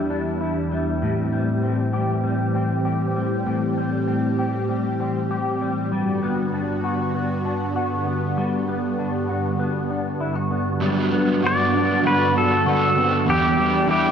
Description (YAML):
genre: dream pop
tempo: 98 BPM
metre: 4/4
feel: straight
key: G major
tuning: A4 = 436 Hz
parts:
  - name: lush unison pad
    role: sustained chords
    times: 0.0-14.1 s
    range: E2 to G4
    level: -24 LUFS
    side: right 1 dB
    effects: chorus
  - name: electric guitar with an envelope filter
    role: arpeggios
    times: 0.0-14.1 s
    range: E2 to G4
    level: -24 LUFS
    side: left 2 dB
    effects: ensemble chorus, dub echo
  - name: overdriven semi-hollow guitar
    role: accompaniment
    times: 10.8-14.1 s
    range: G2 to G4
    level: -24 LUFS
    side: right 4 dB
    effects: harmonic tremolo, analog chorus, dub echo
  - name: pedal steel guitar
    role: melody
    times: 11.5-14.1 s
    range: G4 to D5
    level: -19 LUFS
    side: equal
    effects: dub echo
room: wet plate reverb, RT60 2.6 s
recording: echo-heavy mix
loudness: -19 LUFS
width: side -7 dB against mid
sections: 0.0-10.8 A section; 10.8-14.1 B section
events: none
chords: 0.0 Em7; 1.0 Am7; 5.9 Gmaj7; 13.3 Em7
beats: 0.41 | 1.02 1.63 2.24 2.86 | 3.47 4.08 4.69 5.30 | 5.92 6.53 7.14 7.75 | 8.37 8.98 9.59 10.20 | 10.81 11.43 12.04 12.65 | 13.26 13.88